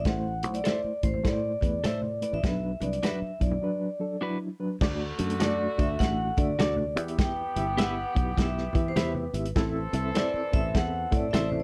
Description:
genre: uptempo 1960s-style soul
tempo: 101 BPM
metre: 4/4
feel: swing 63% on 8ths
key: unclear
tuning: A4 = 440 Hz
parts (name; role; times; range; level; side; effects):
- vibraphone with medium hard mallets; melody; 0.0-11.6 s; B4 to G5; -34 LUFS; equal; none
- fingered electric bass; bass; 0.0-11.6 s; G1 to E3; -34 LUFS; equal; none
- reed electric piano; accompaniment; 0.1-11.6 s; F#3 to G5; -35 LUFS; equal; fast tremolo
- warm soul drum kit; drums; 0.1-11.5 s; crash cymbal, hi-hat, kick drum, snare drum; -30 LUFS; equal; none
- congas; percussion; 0.1-11.6 s; none; -41 LUFS; equal; none
- clean electric guitar; stabs; 0.6-11.5 s; D4 to E5; -36 LUFS; equal; none
- warm horn section; second line; 4.8-11.6 s; D3 to A4; -40 LUFS; equal; none
room: light reverb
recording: dark, warm production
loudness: -28 LUFS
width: mono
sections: 0.0-4.8 A section; 4.8-11.6 B section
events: break 3.6-4.8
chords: 0.1 Am; 2.4 Bm; 4.8 D; 6.9 Em; 9.6 Am

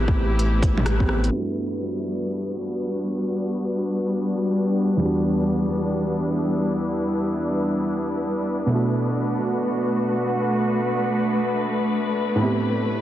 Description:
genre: future garage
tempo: free time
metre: none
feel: none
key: unclear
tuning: A4 = 436 Hz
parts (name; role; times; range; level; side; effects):
- felt-muted upright piano; accompaniment; 0.0-13.0 s; E2 to B4; -26 LUFS; right 2 dB; sidechain pumping, tape echo
- muted chamber string section; sustained chords; 0.0-13.0 s; G3 to B4; -23 LUFS; left 1 dB; sidechain pumping, low-pass filter
- soft dub sub bass; bass; 0.0-1.3 s; A1; -22 LUFS; equal; sidechain pumping
- electronic kick drum; drums; 0.1-1.1 s; none; -23 LUFS; equal; vintage 12-bit sampler grit
- garage drum kit; drums; 0.4-1.3 s; bongos, hi-hat, rim click; -28 LUFS; equal; low-pass filter on hats, vintage 12-bit sampler grit, low-pass filter on perc, soft clipping on snare, low-pass filter on snare, low-pass filter on room
room: moderate huge ambient reverb, RT60 5.1 s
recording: dense, heavily limited modern master, cassette tape, low-pass filter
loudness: -21 LUFS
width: side -12 dB against mid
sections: 0.0-1.3 A section; 1.3-13.0 B section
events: band accent 0.9; filter sweep on string section 1.3-13.0; filter sweep 1.3-13.0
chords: 0.0 Am9; 1.3 Gmaj7; 5.0 Em7; 8.7 Bm7; 12.4 Am9

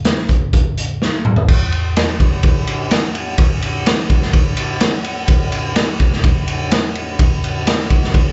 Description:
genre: rock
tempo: 126 BPM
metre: 4/4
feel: straight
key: none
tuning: none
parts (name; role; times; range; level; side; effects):
- raw garage drum kit; drums; 0.0-8.3 s; crash cymbal, hi-hat, kick drum, ride cymbal, snare drum, toms; -16 LUFS; equal; none
room: light reverb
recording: live gig heard through the venue's PA, club reverb, nothing above 7.9 kHz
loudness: -16 LUFS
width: mono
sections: 0.0-1.5 A section; 1.5-8.3 B section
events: drum fill 1.0-1.5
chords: none

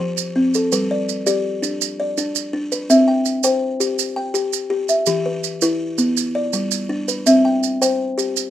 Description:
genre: southern african traditional, mbira-style interlocking cycle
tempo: 110 BPM (dotted quarters)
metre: 12/8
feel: straight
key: unclear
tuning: A4 = 440 Hz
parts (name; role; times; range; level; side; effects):
- buzzing kalimba; arpeggios; 0.0-8.4 s; E3 to G5; -17 LUFS; left 1 dB; none
- maracas; percussion; 0.2-8.5 s; none; -22 LUFS; right 13 dB; none
room: moderate studio reverb, RT60 0.5 s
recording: minimal, uncompressed stereo recording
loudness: -17 LUFS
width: side -11 dB against mid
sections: 0.0-8.5 A section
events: none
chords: 0.0 F; 0.7 G; 2.9 C; 5.1 Em; 6.2 G; 7.3 C

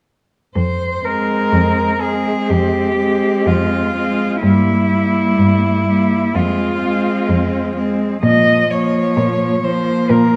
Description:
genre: classical, lyrical piece for cello ensemble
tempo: 63 BPM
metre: 4/4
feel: rubato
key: F minor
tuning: A4 = 440 Hz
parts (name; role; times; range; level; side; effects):
- rich cello; melody; 0.6-10.4 s; E4 to Eb5; -21 LUFS; equal; none
- rich cello; bass; 0.6-10.4 s; F2 to Bb2; -21 LUFS; equal; none
- clear cello; second line; 1.0-10.4 s; Bb3 to C4; -23 LUFS; equal; none
- clear cello; accompaniment; 1.0-10.4 s; F3 to Ab3; -22 LUFS; equal; none
room: wet scoring stage reverb, RT60 1.7 s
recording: dark, warm production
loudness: -16 LUFS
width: mono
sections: 0.6-10.4 A section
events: none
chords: 0.6 Fm; 4.4 Edim/G; 6.4 Fm; 8.2 Bbm

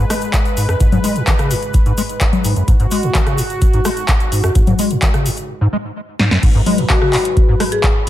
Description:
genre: acid house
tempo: 128 BPM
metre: 4/4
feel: straight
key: G# minor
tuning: A4 = 440 Hz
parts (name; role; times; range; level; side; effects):
- warm analog pad; sustained chords; 0.0-8.1 s; G#2 to B4; -24 LUFS; equal; chorus, tremolo, sidechain pumping
- acid bass, square; riff; 0.0-8.1 s; F#2 to G#3; -18 LUFS; equal; overdrive, ensemble chorus, cassette tape, sidechain pumping, digital delay
- electro analog drum machine; drums; 0.1-8.1 s; congas, crash cymbal, handclaps, hi-hat, rim click, snare drum; -20 LUFS; left 2 dB; none
- egg shaker; percussion; 0.1-5.5 s; none; -31 LUFS; left 1 dB; none
- electronic kick drum; drums; 0.3-7.9 s; none; -15 LUFS; equal; none
- marimba with medium hard mallets; melody; 6.9-8.1 s; F#4 to G#4; -18 LUFS; left 4 dB; ping-pong delay
room: digital ambience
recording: none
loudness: -13 LUFS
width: side -13 dB against mid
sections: 0.0-6.4 A section; 6.4-8.1 B section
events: break 5.5-6.4; drum fill 6.2; drop 6.4-8.1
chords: 0.0 G#m7

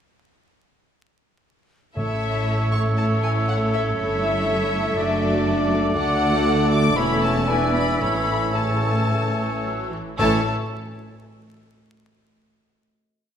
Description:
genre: quick classical-period movement for symphony orchestra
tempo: 109-122 BPM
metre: 4/4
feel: rubato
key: A major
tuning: A4 = 440 Hz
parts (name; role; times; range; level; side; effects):
- rich studio violin section; melody; 2.0-10.5 s; E5 to D6; -28 LUFS; left 5 dB; none
- clear clarinet; second line; 2.0-10.4 s; A4 to B4; -31 LUFS; right 1 dB; none
- clear studio violin section; second line; 2.0-10.5 s; A4 to D5; -31 LUFS; left 1 dB; none
- mellow silver concert flute; second line; 2.0-10.5 s; D6 to E6; -29 LUFS; left 1 dB; none
- warm oboe; second line; 2.0-10.4 s; C#5 to D5; -31 LUFS; right 2 dB; none
- mellow bassoon; accompaniment; 2.0-10.4 s; E3 to A3; -30 LUFS; right 3 dB; none
- warm studio viola section; accompaniment; 2.0-10.5 s; C#3 to F#4; -30 LUFS; right 2 dB; none
- dark French horn section; sustained chords; 2.0-10.4 s; A3 to D4; -28 LUFS; left 2 dB; none
- dark studio cello section; bass; 2.0-10.5 s; D2 to A2; -27 LUFS; equal; none
- rich studio double bass section; bass; 2.0-10.5 s; E1 to D2; -27 LUFS; right 1 dB; none
- timpani; percussion; 2.0-2.7, 10.2-10.4 s; A2; -31 LUFS; equal; none
room: wet scoring stage reverb, RT60 1.8 s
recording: minimal, uncompressed stereo recording, vinyl crackle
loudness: -19 LUFS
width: side -8 dB against mid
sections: 2.0-10.2 theme; 10.2-12.3 final chord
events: none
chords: 2.0 A; 4.0 A7/G; 5.0 D/F#; 6.0 D; 7.0 A/E; 7.5 E7; 8.0 A

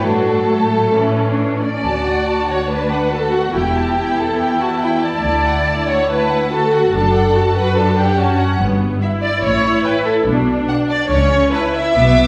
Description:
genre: quick classical-period movement for string orchestra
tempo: 142 BPM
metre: 4/4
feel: rubato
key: D major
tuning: A4 = 445 Hz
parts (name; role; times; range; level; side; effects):
- warm symphonic violin section; melody; 0.0-12.3 s; A4 to D6; -24 LUFS; equal; none
- rich symphonic violin section; second line; 0.0-12.3 s; A3 to E5; -20 LUFS; equal; none
- rich symphonic viola section; accompaniment; 0.0-12.3 s; E3 to F#4; -23 LUFS; equal; none
- rich symphonic cello section; bass; 0.0-12.3 s; D2 to C#3; -23 LUFS; equal; none
- rich symphonic double bass section; bass; 1.8-12.3 s; E1 to D2; -26 LUFS; equal; none
room: wet recital hall reverb, RT60 1.4 s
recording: recorded in a church or concert hall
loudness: -16 LUFS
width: mono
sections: 0.0-1.8 A section; 1.8-12.3 B section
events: none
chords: 0.0 D/A; 0.9 A; 1.8 D; 3.5 A5/E; 5.2 D; 6.9 D/F#; 8.6 Em/G; 9.4 A; 10.3 Bm; 11.1 A/C# (rootless)

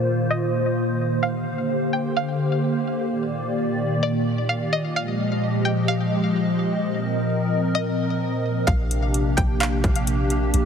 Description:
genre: hip hop, atmospheric cloud-rap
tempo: 129 BPM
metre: 4/4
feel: half-time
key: Bb mixolydian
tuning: A4 = 440 Hz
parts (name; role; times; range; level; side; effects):
- hollow soft pad; sustained chords; 0.0-10.7 s; Bb2 to Eb5; -22 LUFS; equal; ensemble chorus, sidechain pumping, low-pass filter
- string-like resonator pluck; melody; 0.3-10.0 s; D5 to G5; -29 LUFS; equal; chorus, phaser, low-pass filter, ping-pong delay
- soft 808-style bass; bass; 8.7-10.7 s; Bb1; -22 LUFS; equal; none
- trap drum kit; drums; 8.7-10.6 s; handclaps, hi-hat, kick drum; -24 LUFS; equal; none
room: light reverb, digital ambience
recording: heavily compressed radio sound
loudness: -20 LUFS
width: side -7 dB against mid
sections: 0.0-8.7 A section; 8.7-10.7 B section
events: none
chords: 0.0 F7sus4/Bb; 1.2 Bb69; 3.1 Ebmaj7/Bb; 5.0 Fm9/Bb; 6.8 F7sus4/Bb; 8.7 Bb69

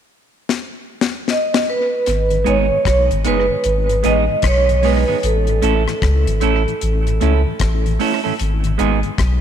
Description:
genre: roots reggae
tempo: 76 BPM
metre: 4/4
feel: swing 62% on 16ths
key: G# phrygian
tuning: A4 = 437 Hz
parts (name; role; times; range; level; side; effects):
- deep reggae drum kit; drums; 0.5-9.4 s; hi-hat, kick drum, rim click, snare drum; -22 LUFS; left 5 dB; tape echo
- vibraphone with hard mallets; melody; 1.3-8.0 s; A4 to D#5; -19 LUFS; right 2 dB; tape echo
- soft dub sub bass; bass; 2.1-9.4 s; F#1 to C#2; -17 LUFS; left 1 dB; none
- mellow tonewheel organ; accompaniment; 2.3-9.1 s; G#2 to E4; -26 LUFS; left 10 dB; slow rotary speaker, tape echo
- semi-hollow electric guitar; accompaniment; 2.4-9.0 s; G#3 to A4; -21 LUFS; right 11 dB; tube saturation, tape echo
room: light reverb, studio reverb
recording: 1960s-style stereo with parts hard left and right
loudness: -14 LUFS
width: side -9 dB against mid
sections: 0.0-2.1 A section; 2.1-9.4 B section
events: drum fill 0.5-2.1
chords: 0.0 N.C.; 2.1 G#m; 5.2 A; 8.4 G#m

